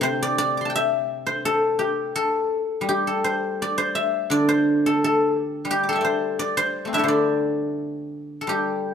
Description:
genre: chinese traditional, Chinese solo plucked strings.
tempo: 85 BPM.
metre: 2/4.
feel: rubato.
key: D shang mode.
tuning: A4 = 441 Hz.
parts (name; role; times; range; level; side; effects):
guzheng; solo; 0.0-8.9 s; C3 to D6; -20 LUFS; left 1 dB; none.
room: light reverb.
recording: close, detailed microphones.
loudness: -20 LUFS.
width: side -7 dB against mid.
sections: 0.0-8.5 A section.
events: none.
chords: none.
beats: | 0.03 0.71 | 1.41 2.12 | 2.85 3.58 | 4.30 5.00 | 5.69 6.38 | 7.07 7.78 | 8.50.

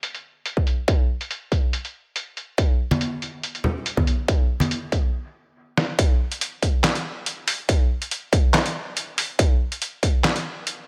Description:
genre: dubstep.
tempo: 141 BPM.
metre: 4/4.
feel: swing 54% on 16ths, half-time.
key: none.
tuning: none.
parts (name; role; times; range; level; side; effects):
trip hop sampler-style drum kit; drums; 0.0-10.8 s; handclaps, hi-hat, snare drum; -27 LUFS; equal; low-pass filter on hats, low-pass filter on snare.
electronic kick drum; drums; 0.6-10.1 s; none; -22 LUFS; equal; distortion.
congas; percussion; 2.9-4.7 s; none; -27 LUFS; equal; none.
room: digital ambience.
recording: none.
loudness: -23 LUFS.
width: mono.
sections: 0.0-6.0 A section; 6.0-10.9 B section.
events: stop 5.1-6.0; drum fill 5.8; drop 6.0-10.9.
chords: none.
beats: 0.03 0.46 | 0.88 1.31 1.73 2.16 | 2.58 3.01 3.43 3.86 | 4.28 4.71 5.14 5.56 | 5.99 6.41 6.84 7.26 | 7.69 8.11 8.54 8.96 | 9.39 9.82 10.24 10.67.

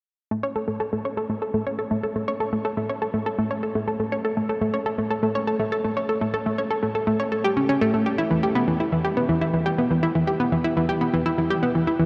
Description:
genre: ambient.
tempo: 122 BPM.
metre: 4/4.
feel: straight.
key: unclear.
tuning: A4 = 441 Hz.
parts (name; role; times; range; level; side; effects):
analog pluck; solo; 0.3-12.1 s; E3 to C#5; -24 LUFS; equal; chorus, analog delay.
room: wet huge ambient reverb, RT60 7.3 s.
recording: dark, warm production.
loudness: -24 LUFS.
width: mono.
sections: 0.3-12.1 A section.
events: none.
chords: none.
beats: | 0.31 0.81 1.30 1.79 | 2.28 2.77 3.26 3.76 | 4.25 4.74 5.23 5.72 | 6.21 6.71 7.20 7.69 | 8.18 8.67 9.17 9.66 | 10.15 10.64 11.13 11.62.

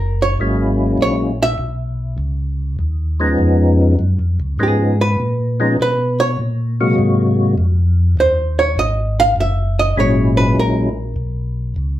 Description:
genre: jazz.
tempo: 100 BPM.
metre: 4/4.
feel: swing 68% on 8ths.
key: unclear.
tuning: A4 = 439 Hz.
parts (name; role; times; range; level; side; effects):
archtop guitar, miked and amplified; accompaniment; 0.0-11.7 s; Ab4 to F5; -18 LUFS; right 2 dB; none.
mellow tonewheel organ; bass; 0.0-12.0 s; Gb1 to Cb3; -17 LUFS; equal; slow rotary speaker.
percussive tonewheel organ; melody; 0.4-10.9 s; Bb2 to Gb4; -16 LUFS; left 1 dB; slow rotary speaker, chorus vibrato, plate reverb.
room: wet club reverb, RT60 0.7 s.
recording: heard from further back in the room.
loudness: -14 LUFS.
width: side -13 dB against mid.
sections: 0.0-12.0 A section.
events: hollow-body jazz guitar solo 0.0-12.0.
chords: 0.0 Gb9; 2.2 Db9; 7.0 Ab9; 9.4 Gb9.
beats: 0.39 0.99 1.59 | 2.19 2.79 3.39 3.99 | 4.59 5.18 5.78 6.38 | 6.98 7.58 8.18 8.78 | 9.37 9.97 10.57 11.17 | 11.77.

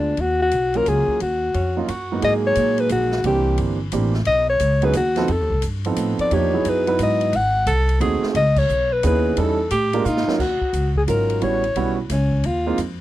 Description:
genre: jazz, small-group swing and bop.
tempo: 176 BPM.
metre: 3/4.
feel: swing 65% on 8ths.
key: unclear.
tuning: A4 = 440 Hz.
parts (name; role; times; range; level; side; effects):
breathy alto saxophone; melody; 0.0-12.8 s; C#4 to F#5; -20 LUFS; left 2 dB; none.
warm grand piano; accompaniment; 0.0-12.8 s; Ab2 to B4; -23 LUFS; right 5 dB; none.
upright bass; bass; 0.0-13.0 s; G1 to A#2; -22 LUFS; equal; none.
open jazz drum kit; drums; 0.2-12.9 s; crash cymbal, hi-hat, kick drum, ride cymbal, snare drum; -32 LUFS; equal; none.
mellow tenor saxophone; second line; 1.5-2.2, 7.7-10.4 s; Db4 to A4; -24 LUFS; right 3 dB; none.
room: little or no reverb.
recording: dry, close 1970s-style studio recording.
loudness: -17 LUFS.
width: side -14 dB against mid.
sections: 0.0-2.2 A section; 2.2-10.4 B section; 10.4-13.0 A section.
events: band accent 8.5; drum fill 10.1-10.4.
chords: 0.2 Ebm7; 2.2 G#sus2; 3.2 C9; 4.3 B; 5.3 F7#11; 6.3 Emaj7; 7.3 G#7b9; 8.3 C#m9; 9.4 A7#11; 10.1 A#5; 10.4 Ebm7; 11.4 A13; 12.4 Ab6.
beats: | 0.18 0.52 0.86 | 1.20 1.54 1.89 | 2.23 2.57 2.91 | 3.25 3.59 3.93 | 4.27 4.61 4.95 | 5.29 5.63 5.97 | 6.31 6.65 6.99 | 7.33 7.67 8.01 | 8.35 8.69 9.03 | 9.37 9.71 10.05 | 10.39 10.73 11.07 | 11.42 11.76 12.10 | 12.44 12.78.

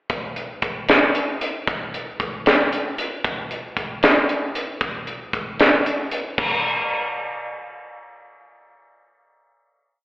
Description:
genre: jazz.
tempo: 76 BPM (dotted quarters).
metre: 6/8.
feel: straight.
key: none.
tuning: none.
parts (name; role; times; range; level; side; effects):
crisp fusion drum kit; drums; 0.1-6.5 s; crash cymbal, hi-hat, kick drum, snare drum; -19 LUFS; equal; slapback echo.
room: wet club ambience, RT60 0.5 s.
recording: live gig heard through the venue's PA, recital hall reverb, telephone sound.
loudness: -19 LUFS.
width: side -20 dB against mid.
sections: 0.1-6.4 groove; 6.4-9.5 final hit.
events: none.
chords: none.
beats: | 0.10 0.89 | 1.67 2.46 | 3.24 4.03 | 4.81 5.59 | 6.38.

